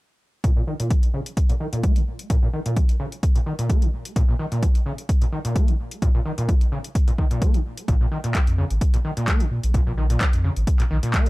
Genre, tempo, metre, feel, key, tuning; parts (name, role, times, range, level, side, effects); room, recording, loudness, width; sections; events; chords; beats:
acid house; 129 BPM; 4/4; swing 53% on 16ths; Bb minor; A4 = 444 Hz
overdriven acid bass; riff; 0.4-11.3 s; Bb2 to Bb3; -26 LUFS; equal; distortion, tube saturation, lush chorus, digital delay
electronic kick drum; drums; 0.4-11.2 s; -19 LUFS; equal; overdrive
punchy analog drum machine; drums; 0.4-11.3 s; handclaps, hi-hat; -31 LUFS; left 1 dB; overdrive
saturated sub bass; bass; 7.9-11.0 s; Ab1 to Bb2; -22 LUFS; equal; sidechain pumping
little or no reverb; dark, warm production; -19 LUFS; side -21 dB against mid
0.4-11.3 A section
filter sweep on acid bass 0.4-11.3
| 0.44 0.91 1.37 1.83 | 2.30 2.77 3.23 3.70 | 4.16 4.63 5.09 5.56 | 6.02 6.49 6.95 7.42 | 7.88 8.35 8.81 9.28 | 9.74 10.21 10.67 11.14